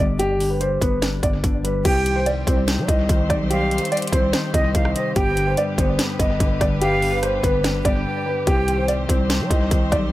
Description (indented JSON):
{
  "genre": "hip hop, trap",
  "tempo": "145 BPM",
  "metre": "4/4",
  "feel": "half-time",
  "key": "C harmonic minor",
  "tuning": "A4 = 440 Hz",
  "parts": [
    { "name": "dark concert grand piano", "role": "melody", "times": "0.0-10.1 s", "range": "G4 to Eb5", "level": "-23 LUFS", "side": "equal", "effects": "low-pass filter, analog delay" },
    { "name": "mellow electric guitar", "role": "accompaniment", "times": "0.0-10.1 s", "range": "G2 to Eb4", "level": "-27 LUFS", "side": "left 2 dB", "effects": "low-pass filter" },
    { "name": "growling 808-style bass", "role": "bass", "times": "0.0-10.1 s", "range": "G1 to G3", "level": "-23 LUFS", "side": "equal", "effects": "none" },
    { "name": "trap drum kit", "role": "drums", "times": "0.2-10.0 s", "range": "crash cymbal, hi-hat, kick drum, rim click, snare drum", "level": "-22 LUFS", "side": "equal", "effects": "none" },
    { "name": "jazz flute", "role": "second line", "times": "1.9-8.9 s", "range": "Eb5 to G5", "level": "-28 LUFS", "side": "right 3 dB", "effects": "analog delay" },
    { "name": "dark chamber string section", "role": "sustained chords", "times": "1.9-10.1 s", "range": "D3 to C5", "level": "-30 LUFS", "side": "equal", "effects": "none" }
  ],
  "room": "light reverb, studio reverb",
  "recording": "echo-heavy mix",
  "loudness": "-18 LUFS",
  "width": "side -15 dB against mid",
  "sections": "0.0-1.9 A section; 1.9-10.1 B section",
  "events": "break 8.1-8.5",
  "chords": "0.0 G; 1.9 Cm; 5.2 G; 8.5 Cm",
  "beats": "| 0.20 0.61 1.02 1.44 | 1.85 2.26 2.68 3.09 | 3.51 3.92 4.33 4.75 | 5.16 5.58 5.99 6.40 | 6.82 7.23 7.64 8.06 | 8.47 8.88 9.30 9.71"
}